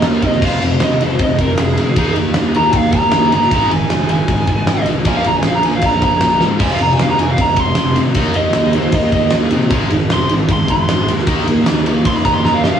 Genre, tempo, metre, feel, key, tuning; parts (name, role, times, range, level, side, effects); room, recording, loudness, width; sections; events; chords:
hard rock; 155 BPM; 4/4; straight; A4 = 440 Hz
lead guitar through a small cranked amp; melody; 0.0-12.8 s; Ab4 to C6; -18 LUFS; right 1 dB; overdrive, cassette tape, tape echo
high-gain distorted guitar; riff; 0.0-12.8 s; F2 to Eb4; -18 LUFS; right 1 dB; distortion, cassette tape
fuzz fingered electric bass; bass; 0.0-12.8 s; F1 to C3; -20 LUFS; equal; overdrive
huge arena drum kit; drums; 0.0-12.7 s; crash cymbal, kick drum, ride cymbal, snare drum; -17 LUFS; equal; cassette tape
light reverb; home recording on cassette; -12 LUFS; side -8 dB against mid
0.0-12.8 A section
lead electric guitar solo 0.0-12.8; drum fill 6.4, 12.4-12.8
0.4 Fm; 2.0 Eb; 3.5 Ab; 5.1 Bb5; 6.6 F5; 8.2 Eb5; 9.7 Ab; 11.3 Eb5